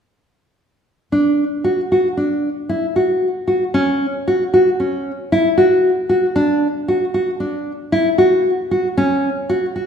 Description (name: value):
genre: contemporary instrumental, contemporary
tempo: 115 BPM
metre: 5/4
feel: straight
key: unclear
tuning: A4 = 440 Hz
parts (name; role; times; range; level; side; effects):
- nylon-string guitar; arpeggios; 1.1-9.9 s; C#4 to F#4; -15 LUFS; equal; none
room: wet recital hall reverb, RT60 1.6 s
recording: recorded in a church or concert hall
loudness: -15 LUFS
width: side -7 dB against mid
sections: 1.1-9.9 A section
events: none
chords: none